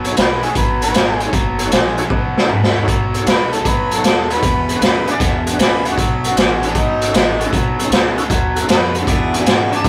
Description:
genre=electric blues shuffle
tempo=155 BPM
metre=4/4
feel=swing 67% on 8ths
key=B mixolydian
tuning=A4 = 441 Hz
part: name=tonewheel organ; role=accompaniment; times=0.0-9.8 s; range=B3 to B5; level=-27 LUFS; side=equal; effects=slow rotary speaker, overdrive, chorus vibrato
part: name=overdriven electric guitar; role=riff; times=0.0-9.9 s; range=E2 to G#3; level=-23 LUFS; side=equal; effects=none
part: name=upright bass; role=bass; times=0.0-9.9 s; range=F#1 to B2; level=-28 LUFS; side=equal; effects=none
part: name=raw garage drum kit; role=drums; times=0.0-9.9 s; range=hi-hat, kick drum, snare drum, toms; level=-18 LUFS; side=equal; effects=none
part: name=warm harmonica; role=melody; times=0.1-9.9 s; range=D4 to D5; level=-23 LUFS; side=equal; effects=overdrive
part: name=edgy saxophone section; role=stabs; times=9.1-9.6 s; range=D4 to G#4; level=-27 LUFS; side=equal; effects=none
room=moderate studio ambience, RT60 0.5 s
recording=rough rehearsal-room recording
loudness=-16 LUFS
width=mono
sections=0.0-2.9 A section; 2.9-9.9 B section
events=drum fill 2.1-2.9; tonewheel organ fill 2.3-2.9; harmonica solo 2.9-9.9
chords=0.0 B7; 4.4 E7; 6.0 B7; 9.1 E7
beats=0.17 0.56 0.95 | 1.33 1.72 2.11 2.50 | 2.88 3.27 3.66 4.04 | 4.43 4.82 5.21 5.59 | 5.98 6.37 6.75 7.14 | 7.53 7.92 8.30 8.69 | 9.08 9.46 9.85

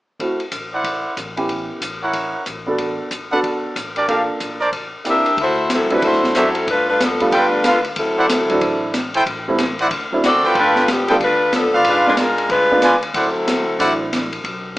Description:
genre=jazz, big band swing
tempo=185 BPM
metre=4/4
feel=swing 62% on 8ths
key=D mixolydian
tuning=A4 = 441 Hz
part: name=warm upright piano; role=accompaniment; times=0.2-14.3 s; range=C3 to A4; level=-21 LUFS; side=right 1 dB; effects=none
part: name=open jazz drum kit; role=drums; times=0.2-14.5 s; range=hi-hat, kick drum, ride cymbal, rim click, snare drum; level=-24 LUFS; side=left 1 dB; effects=none
part: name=upright bass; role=bass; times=0.5-14.8 s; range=G1 to G2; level=-38 LUFS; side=equal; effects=none
part: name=bright trumpet section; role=stabs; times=0.7-13.9 s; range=D4 to G#5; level=-18 LUFS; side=right 1 dB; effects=none
part: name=clear saxophone section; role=melody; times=5.1-14.1 s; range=F3 to E5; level=-16 LUFS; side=left 1 dB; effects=none
room=moderate large studio reverb, RT60 0.9 s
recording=small speaker sound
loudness=-15 LUFS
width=side -17 dB against mid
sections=0.2-5.4 A section; 5.4-14.8 B section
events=none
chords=0.2 D9; 1.5 C#m7b5; 2.1 F#7; 2.8 Bm7; 4.1 Gm7; 4.7 C9; 5.4 D9; 6.7 G9; 8.0 D9; 9.3 Am7; 9.9 D9; 10.6 G9; 11.9 G#dim7; 13.1 D9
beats=| 0.20 0.52 0.85 1.17 | 1.49 1.82 2.14 2.47 | 2.79 3.11 3.44 3.76 | 4.08 4.41 4.73 5.06 | 5.38 5.71 6.03 6.35 | 6.68 7.00 7.32 7.65 | 7.97 8.30 8.62 8.94 | 9.27 9.59 9.91 10.24 | 10.56 10.88 11.21 11.53 | 11.86 12.18 12.50 12.82 | 13.15 13.47 13.79 14.12 | 14.44 14.76

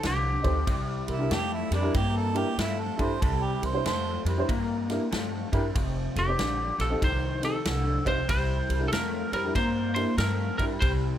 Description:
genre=electric blues shuffle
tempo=95 BPM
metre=4/4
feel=swing 64% on 8ths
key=C mixolydian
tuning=A4 = 440 Hz
part: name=lightly driven lead guitar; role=melody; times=0.0-1.3, 6.2-10.9 s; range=G4 to C5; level=-30 LUFS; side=equal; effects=none
part: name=electric guitar through a small old amp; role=riff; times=0.0-11.2 s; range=F2 to Bb3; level=-32 LUFS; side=left 2 dB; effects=ensemble chorus
part: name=upright bass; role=bass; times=0.0-11.1 s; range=F1 to G2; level=-30 LUFS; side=equal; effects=none
part: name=swinging big-band drum kit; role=drums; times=0.0-11.0 s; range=kick drum, ride cymbal, snare drum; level=-32 LUFS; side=equal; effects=none
part: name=dark upright piano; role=accompaniment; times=0.4-10.7 s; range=C4 to C5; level=-32 LUFS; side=right 1 dB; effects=none
part: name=mellow harmonica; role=second line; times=1.1-4.2 s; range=D4 to C5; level=-31 LUFS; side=right 5 dB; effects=none
room=light reverb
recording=none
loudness=-25 LUFS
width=side -11 dB against mid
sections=0.0-11.2 A section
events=none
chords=0.0 F9; 0.7 C9; 5.7 F9; 8.3 C9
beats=0.04 | 0.67 1.31 1.94 2.58 | 3.21 3.85 4.48 5.11 | 5.75 6.38 7.02 7.65 | 8.28 8.92 9.55 10.18 | 10.81

